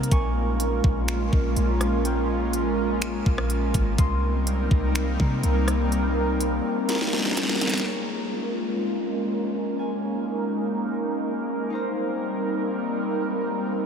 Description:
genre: hip hop, atmospheric cloud-rap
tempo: 124 BPM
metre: 4/4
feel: half-time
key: Bb dorian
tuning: A4 = 440 Hz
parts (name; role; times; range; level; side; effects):
- airy breathy pad; sustained chords; 0.0-13.9 s; G3 to Bb4; -25 LUFS; equal; chorus, sidechain pumping, low-pass filter
- clean 808-style bass; bass; 0.0-6.6 s; Ab1 to C3; -25 LUFS; equal; none
- trap drum kit; drums; 0.0-7.9 s; finger snaps, hi-hat, kick drum, rim click, snare drum; -26 LUFS; equal; none
- concert harp; texture; 0.0-13.9 s; Eb4 to Db6; -38 LUFS; left 3 dB; none
room: wet huge ambient reverb, RT60 9.3 s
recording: dreamy mix soaked in reverb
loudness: -22 LUFS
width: side -7 dB against mid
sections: 0.0-7.9 A section; 7.9-13.9 B section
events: drum fill 6.9-7.9; filter sweep on analog synth pad 7.9-13.9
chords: 0.1 Bbm7; 4.0 Cm7; 7.9 Bbm7; 11.7 Cm7

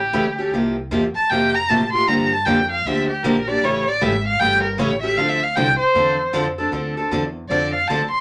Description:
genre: acoustic string swing (jazz manouche)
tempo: 155 BPM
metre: 4/4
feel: swing 62% on 8ths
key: D minor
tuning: A4 = 440 Hz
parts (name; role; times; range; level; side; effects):
- rich violin; melody; 0.0-8.2 s; G4 to C6; -21 LUFS; equal; none
- upright bass; bass; 0.0-8.2 s; G1 to A2; -32 LUFS; equal; none
- picked steel-string acoustic guitar; accompaniment; 0.1-8.0 s; C3 to A4; -23 LUFS; equal; none
room: moderate studio ambience, RT60 0.5 s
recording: none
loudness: -19 LUFS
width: mono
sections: 0.0-6.7 A section; 6.7-8.2 A section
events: violin solo 0.0-8.2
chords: 0.0 A7; 0.5 C7sus4; 2.1 Gm7; 3.6 A7; 5.2 Dm7

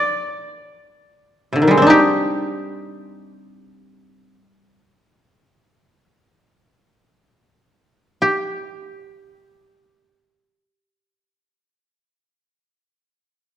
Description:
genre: japanese traditional, Japanese chamber music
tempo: free time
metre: none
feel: none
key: G miyako bushi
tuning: A4 = 440 Hz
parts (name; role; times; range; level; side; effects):
- koto; solo; 0.0-11.3 s; C3 to D5; -15 LUFS; equal; none
room: moderate scoring stage reverb, RT60 1.7 s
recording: dark, warm production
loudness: -15 LUFS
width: side -11 dB against mid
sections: 0.0-8.2 A section; 8.2-13.6 B section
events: slowing down 0.0-8.2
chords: none

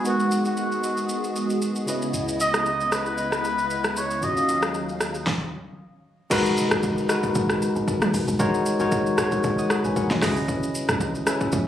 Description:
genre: amapiano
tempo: 115 BPM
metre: 4/4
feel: swing 55% on 16ths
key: G# minor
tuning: A4 = 440 Hz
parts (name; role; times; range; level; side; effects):
- trumpet with cup mute; melody; 0.0-4.8 s; F#4 to D#5; -25 LUFS; equal; ping-pong delay
- tine electric piano; accompaniment; 0.0-11.7 s; C#3 to D#6; -25 LUFS; left 1 dB; medium stereo tremolo
- hollow soft pad; sustained chords; 0.0-5.3 s; C#3 to E#5; -29 LUFS; right 1 dB; ensemble chorus
- deep house drum kit; drums; 0.0-11.7 s; crash cymbal, hi-hat, kick drum, rim click, shaker, snare drum, toms; -26 LUFS; equal; overdrive
- punchy sub bass; bass; 2.1-5.2 s; C#2 to D#2; -36 LUFS; right 1 dB; none
- impact; sound effects; 6.3-8.4 s; none; -36 LUFS; equal; none
- deep log drum bass; bass; 6.7-11.7 s; F#1 to C#2; -30 LUFS; equal; none
room: light reverb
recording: recorded on a phone in the room, club reverb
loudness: -21 LUFS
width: side -10 dB against mid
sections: 0.0-6.3 A section; 6.3-11.7 B section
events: stop 5.3-6.3; drop 6.3-11.7; impact 6.3-8.4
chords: 0.0 G#m9; 1.9 C#m9; 4.2 D#m9; 6.3 G#m9; 10.2 C#m9

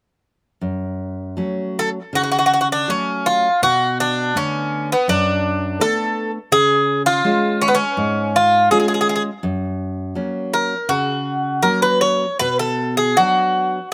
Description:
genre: fado-style ballad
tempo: 81 BPM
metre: 4/4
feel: rubato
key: F# harmonic minor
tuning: A4 = 444 Hz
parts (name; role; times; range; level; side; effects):
- nylon-string guitar; accompaniment; 0.6-13.8 s; F#2 to E#4; -25 LUFS; equal; none
- Greek bouzouki; melody; 1.8-13.9 s; B3 to C#5; -19 LUFS; equal; slapback echo
room: little or no reverb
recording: recorded outdoors, with no room sound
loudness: -19 LUFS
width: mono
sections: 0.6-13.9 A section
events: none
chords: 0.6 F#m; 3.6 Bm7; 6.5 C#; 9.4 F#; 12.4 Bm

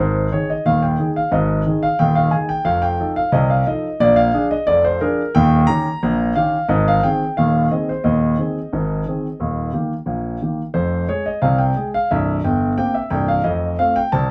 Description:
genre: ragtime piano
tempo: 89 BPM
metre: 2/4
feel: straight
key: Ab major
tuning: A4 = 440 Hz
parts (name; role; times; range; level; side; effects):
- warm concert grand piano; solo; 0.0-14.3 s; C1 to Bb5; -18 LUFS; equal; none
room: wet booth ambience, RT60 0.2 s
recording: heard from further back in the room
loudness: -18 LUFS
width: mono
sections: 0.0-14.3 A section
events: none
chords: 0.0 Ab5; 2.7 F7; 4.0 Bb7; 5.4 Eb7; 6.7 Ab/Eb; 9.4 Eb; 10.8 Fm; 12.1 C5; 13.5 F

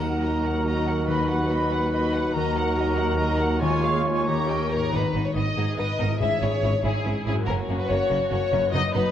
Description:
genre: cinematic, heroic adventure film score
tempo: 94 BPM (dotted quarters)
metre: 6/8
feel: straight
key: Eb minor, G# minor from 4.9 s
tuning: A4 = 440 Hz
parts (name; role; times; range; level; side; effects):
- warm symphonic violin section; melody; 0.0-9.1 s; G#4 to B5; -28 LUFS; left 4 dB; none
- clear clarinet; second line; 0.0-4.7 s; F4 to G4; -32 LUFS; equal; none
- rich symphonic violin section; second line; 0.0-9.0 s; A#3 to Gb5; -34 LUFS; left 1 dB; none
- silver concert flute; second line; 0.0-4.7 s; Bb5 to Db6; -31 LUFS; right 2 dB; none
- rich studio viola section; accompaniment; 0.0-9.1 s; D#4 to B4; -35 LUFS; right 1 dB; none
- dark French horn section; sustained chords; 0.0-4.7 s; Gb3 to G4; -30 LUFS; left 2 dB; none
- concert harp; arpeggios; 0.0-9.1 s; F#2 to Gb5; -31 LUFS; left 7 dB; none
- warm trumpet; stabs; 0.0-4.7 s; Bb4 to Db5; -30 LUFS; right 2 dB; none
- clear symphonic double bass section; bass; 0.0-9.0 s; F#1 to Eb2; -29 LUFS; right 3 dB; none
- warm symphonic cello section; bass; 0.0-9.0 s; Eb2 to G#2; -30 LUFS; right 2 dB; none
- timpani; percussion; 0.0-6.8 s; G#2 to Eb3; -34 LUFS; left 1 dB; none
room: wet scoring stage reverb, RT60 1.9 s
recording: worn, warbling old tape, cassette tape, warbly pitch drift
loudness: -21 LUFS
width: side -10 dB against mid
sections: 0.0-4.9 A section; 4.9-9.1 B section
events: none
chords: 0.0 Ebm; 1.1 B/D#; 2.4 Ebm; 3.6 Db/Eb; 4.3 Eb7; 4.9 G#m; 6.2 C#m/G#; 7.5 F#

